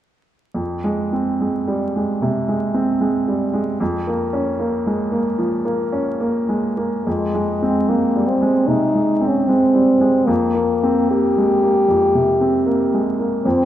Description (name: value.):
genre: classical, romantic duo for French horn and grand piano.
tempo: 74 BPM.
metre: 4/4.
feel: uneven beats, rubato.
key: F minor.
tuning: A4 = 441 Hz.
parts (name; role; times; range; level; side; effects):
clear baby grand piano; accompaniment; 0.5-13.7 s; F2 to Db4; -18 LUFS; right 1 dB; none.
warm French horn; melody; 7.1-13.7 s; Ab3 to G4; -16 LUFS; left 1 dB; none.
room: moderate scoring stage reverb, RT60 1.9 s.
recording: dark, warm production, vinyl crackle.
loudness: -16 LUFS.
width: side -11 dB against mid.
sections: 0.6-7.1 A section; 7.1-13.7 B section.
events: none.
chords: 0.6 Fm; 3.8 Bbm/F; 7.1 Fm; 10.3 C5/F.